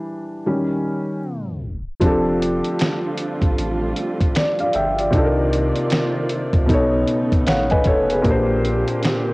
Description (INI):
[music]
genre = lo-fi hip hop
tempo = 77 BPM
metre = 4/4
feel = swing 62% on 16ths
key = F major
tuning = A4 = 440 Hz
[part]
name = felt-muted upright piano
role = accompaniment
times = 0.0-9.3 s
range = Bb2 to Ab5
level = -19 LUFS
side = equal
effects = cassette tape, low-pass filter
[part]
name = dark studio string section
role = sustained chords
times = 2.0-9.3 s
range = C#3 to D5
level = -27 LUFS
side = right 2 dB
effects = low-pass filter
[part]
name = saturated sub bass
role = bass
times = 2.0-8.8 s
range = F1 to D2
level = -25 LUFS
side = equal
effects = transformer saturation
[part]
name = dusty soul sampler-style drum kit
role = drums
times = 2.0-9.3 s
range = finger snaps, hi-hat, kick drum, snare drum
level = -20 LUFS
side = equal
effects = none
[sound]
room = light reverb, studio reverb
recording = home recording on cassette, tape stop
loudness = -17 LUFS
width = side -24 dB against mid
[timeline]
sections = 0.0-2.0 A section; 2.0-9.3 B section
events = felt piano solo 0.0-2.0; tape stop 1.2-2.0; felt piano fill 7.1-8.2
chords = 0.5 Eb7; 2.0 F69; 5.1 Cm11; 6.7 B9; 8.2 Bb69